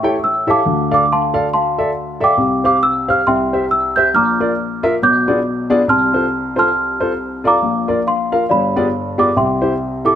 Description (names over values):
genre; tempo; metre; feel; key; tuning
gospel; 138 BPM; 4/4; swing 60% on 8ths; F major; A4 = 440 Hz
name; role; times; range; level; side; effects
small celesta; melody; 0.0-10.2 s; D5 to G6; -16 LUFS; right 1 dB; slapback echo
warm upright piano; accompaniment; 0.0-10.2 s; G1 to G5; -17 LUFS; left 2 dB; none
room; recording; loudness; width
moderate echo chamber reverb, RT60 1.9 s; none; -13 LUFS; side -9 dB against mid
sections
0.0-10.2 A section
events
none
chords
0.0 A7; 0.7 Dm; 2.4 Csus4; 3.3 C; 4.1 Bb; 5.0 Bdim7; 5.9 F/C; 7.6 Bb; 8.5 G7b9; 9.4 C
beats
0.23 | 0.66 1.10 1.53 1.97 | 2.40 2.84 3.28 3.71 | 4.15 4.58 5.01 5.45 | 5.88 6.32 6.75 7.19 | 7.62 8.06 8.49 8.93 | 9.36 9.79